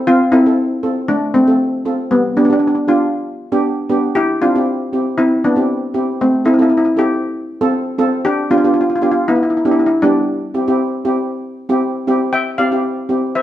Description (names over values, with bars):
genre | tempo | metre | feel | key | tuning
calypso | 117 BPM | 4/4 | straight | C major | A4 = 438 Hz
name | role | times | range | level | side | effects
steel pan | accompaniment | 0.0-13.4 s | B3 to A4 | -17 LUFS | right 1 dB | none
steel pan | melody | 0.1-13.4 s | G3 to G5 | -14 LUFS | left 1 dB | none
room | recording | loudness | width
wet stone room reverb, RT60 1.0 s | band playing live in one room | -13 LUFS | side -12 dB against mid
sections
0.0-12.3 A section; 12.3-13.4 A section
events
none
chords
0.1 Fmaj7; 2.1 G7; 4.2 Cmaj7; 6.2 Fmaj7; 8.2 G; 10.3 Cadd9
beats
| 0.06 0.57 1.08 1.60 | 2.11 2.62 3.13 3.64 | 4.16 4.67 5.18 5.69 | 6.20 6.71 7.22 7.73 | 8.24 8.76 9.27 9.78 | 10.29 10.80 11.31 11.82 | 12.33 12.84 13.35